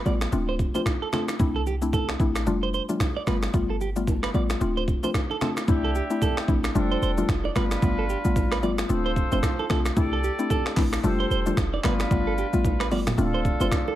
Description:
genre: afrobeats.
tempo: 112 BPM.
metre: 4/4.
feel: swing 58% on 16ths.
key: C major.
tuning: A4 = 439 Hz.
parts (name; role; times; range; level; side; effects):
mallet-like synth pluck; accompaniment; 0.0-13.7 s; G3 to F4; -27 LUFS; left 3 dB; chorus.
clean electric guitar; riff; 0.1-13.9 s; G4 to D5; -32 LUFS; right 7 dB; digital delay.
clean 808-style bass; bass; 0.1-13.7 s; D1 to C2; -27 LUFS; equal; none.
breakbeat sampler-style drum kit; drums; 0.1-13.9 s; finger snaps, handclaps, hi-hat, kick drum, rim click, shaker, toms; -27 LUFS; equal; none.
bongos and congas; percussion; 0.1-14.0 s; none; -35 LUFS; right 3 dB; none.
clear horn section; second line; 5.7-14.0 s; C4 to D5; -31 LUFS; equal; digital delay.
room: digital ambience.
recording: none.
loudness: -22 LUFS.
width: side -13 dB against mid.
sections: 0.0-5.7 A section; 5.7-14.0 B section.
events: none.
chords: 0.3 Dm7; 1.4 C69; 2.5 F69; 3.3 G9; 4.6 Dm7; 5.7 C69; 6.8 F69; 7.6 G9; 8.9 Dm7; 10.0 C69; 11.0 F69; 11.8 G9; 13.2 Dm7.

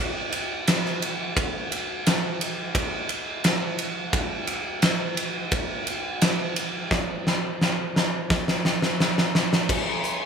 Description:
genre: rock.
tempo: 86 BPM.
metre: 4/4.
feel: straight.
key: none.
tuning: none.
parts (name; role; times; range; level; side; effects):
huge arena drum kit; drums; 0.3-10.2 s; crash cymbal, hi-hat, kick drum, ride cymbal, snare drum; -22 LUFS; equal; none.
room: light reverb.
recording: studio reverb.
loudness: -22 LUFS.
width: side -6 dB against mid.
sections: 0.0-9.7 A section.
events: drum fill 6.9-9.7.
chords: none.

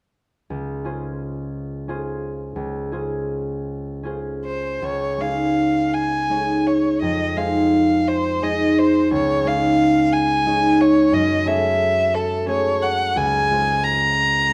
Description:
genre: classical, impressionist duo for violin and harp.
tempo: 49-62 BPM (dotted quarters).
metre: 6/8.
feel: rubato.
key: Db major.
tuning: A4 = 440 Hz.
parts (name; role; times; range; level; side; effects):
concert harp; accompaniment; 0.5-14.5 s; Db2 to Db5; -22 LUFS; equal; none.
rich violin; melody; 4.5-14.5 s; A4 to Bb5; -22 LUFS; equal; none.
room: wet large studio reverb, RT60 1.3 s.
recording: dark, warm production.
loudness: -20 LUFS.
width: mono.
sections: 0.5-4.8 A section; 4.8-14.5 B section.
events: none.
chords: 0.5 Dbmaj7; 4.8 Dbadd9; 7.0 Fm7; 9.1 Dbadd9; 11.1 Gbm9; 13.2 Dbmaj7.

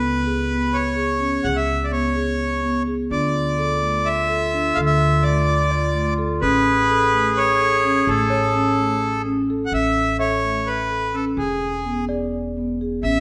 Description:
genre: contemporary instrumental, chamber music in an uneven meter.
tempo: 254 BPM (eighths).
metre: 7/8.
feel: straight.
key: A major.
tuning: A4 = 437 Hz.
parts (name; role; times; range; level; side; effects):
accordion; melody; 0.0-13.2 s; G#4 to F#5; -23 LUFS; equal; none.
marimba with soft mallets; arpeggios; 0.0-13.2 s; A3 to A4; -26 LUFS; equal; none.
upright bass; bass; 0.0-13.2 s; E1 to D2; -28 LUFS; equal; none.
mellow clarinet; second line; 3.1-9.5 s; F4 to G#4; -27 LUFS; equal; none.
celesta; texture; 5.7-12.8 s; C#5 to E5; -32 LUFS; equal; none.
room: wet recital hall reverb, RT60 1.4 s.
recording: none.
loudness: -20 LUFS.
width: mono.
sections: 0.0-9.7 A section; 9.7-13.2 B section.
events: none.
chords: 0.0 C#5; 3.1 Dmadd9; 6.4 Amaj7; 11.4 E7.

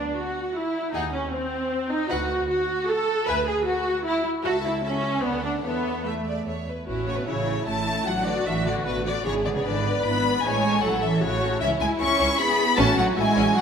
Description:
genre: quick classical-period movement for string orchestra.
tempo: 153 BPM.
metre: 3/4.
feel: straight.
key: A major.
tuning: A4 = 440 Hz.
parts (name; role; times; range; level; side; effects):
rich symphonic viola section; accompaniment; 0.0-13.6 s; A3 to C#5; -26 LUFS; equal; none.
clear symphonic cello section; bass; 0.0-13.6 s; B2 to B4; -29 LUFS; right 2 dB; none.
rich symphonic double bass section; bass; 0.0-13.4 s; G#1 to E2; -31 LUFS; right 3 dB; none.
warm symphonic violin section; melody; 0.9-13.6 s; B4 to C#6; -26 LUFS; left 3 dB; none.
clear studio violin section; second line; 0.9-13.6 s; G#3 to F#5; -31 LUFS; left 2 dB; none.
room: moderate concert hall reverb, RT60 2.2 s.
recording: none.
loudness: -22 LUFS.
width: side -7 dB against mid.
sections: 0.0-6.9 A section; 6.9-13.6 B section.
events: none.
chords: 0.0 Bm/D (rootless); 0.9 G#/D#; 2.1 Bm/D (rootless); 3.3 E7/D; 4.5 A/C#; 5.2 Bm7/D; 5.7 A/E; 6.5 E5; 6.9 A; 8.1 Bm7/A; 9.3 E7/G#; 10.4 A; 11.6 C#m; 12.8 F#m/A.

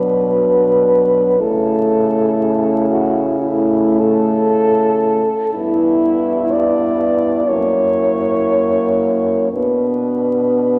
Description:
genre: classical, lyrical piece for horn quartet.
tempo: 53-63 BPM.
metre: 4/4.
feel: rubato.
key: B minor.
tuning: A4 = 439 Hz.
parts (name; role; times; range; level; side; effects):
warm French horn; melody; 0.0-10.8 s; E4 to D5; -18 LUFS; equal; none.
mellow French horn; second line; 0.0-10.8 s; D4 to E4; -24 LUFS; equal; none.
mellow French horn; accompaniment; 0.0-10.8 s; F#3 to B3; -22 LUFS; equal; none.
warm French horn; bass; 0.0-10.8 s; F#2 to C#3; -25 LUFS; equal; none.
room: wet concert hall reverb, RT60 2.4 s.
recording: vinyl crackle.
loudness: -16 LUFS.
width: mono.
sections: 0.0-10.8 A section.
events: none.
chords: 0.0 Bm; 1.4 A/C#; 5.5 Em/G; 7.5 F#7; 9.5 Bm.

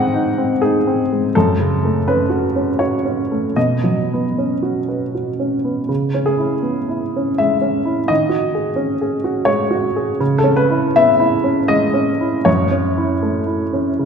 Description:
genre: neoclassical minimalist piano.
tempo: 76-86 BPM.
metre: 3/4.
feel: rubato.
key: C# minor.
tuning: A4 = 440 Hz.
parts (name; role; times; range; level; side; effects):
warm upright piano; solo; 0.0-14.1 s; F#2 to F#5; -15 LUFS; equal; none.
room: wet concert hall reverb, RT60 1.9 s.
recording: recorded in a church or concert hall.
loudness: -15 LUFS.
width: side -6 dB against mid.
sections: 0.0-5.9 A section; 5.9-14.1 B section.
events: none.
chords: 0.0 G#; 1.3 F#m; 3.6 Badd9; 5.9 C#m7; 8.1 G#7sus4/D#; 10.2 C#m7; 12.5 F#m7.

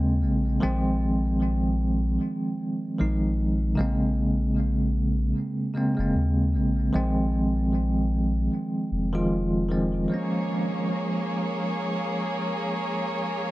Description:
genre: trip hop.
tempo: 76 BPM.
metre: 4/4.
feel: swing 56% on 16ths.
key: Bb minor.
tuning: A4 = 441 Hz.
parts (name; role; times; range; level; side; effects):
bell-like tine electric piano; accompaniment; 0.0-13.5 s; Db3 to F4; -25 LUFS; right 1 dB; tremolo, tape echo.
soft dub sub bass; bass; 0.0-10.1 s; F1 to Eb2; -26 LUFS; equal; tube saturation.
rich studio violin section; sustained chords; 10.1-13.5 s; Bb3 to Db5; -29 LUFS; equal; none.
room: light reverb, small room ambience.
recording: none.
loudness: -23 LUFS.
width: side -17 dB against mid.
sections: 0.0-10.1 A section; 10.1-13.5 B section.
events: none.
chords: 0.0 Bbm9; 0.6 Fm7/Bb; 3.8 Bbm9; 6.9 Fm7/Bb; 10.1 Bbm7.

